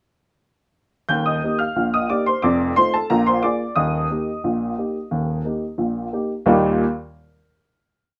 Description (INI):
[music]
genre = ragtime piano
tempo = 90 BPM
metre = 2/4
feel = straight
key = Eb major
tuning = A4 = 440 Hz
[part]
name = warm upright piano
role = solo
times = 1.1-6.8 s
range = Eb1 to G6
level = -21 LUFS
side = equal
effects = none
[sound]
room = light reverb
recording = none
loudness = -21 LUFS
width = mono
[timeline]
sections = 1.1-6.5 A section; 6.5-7.8 final chord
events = none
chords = 1.1 Eb; 2.4 F7; 3.1 Bb7; 3.8 Eb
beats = | 1.10 1.76 | 2.43 3.10 | 3.77 4.43 | 5.11 5.78 | 6.45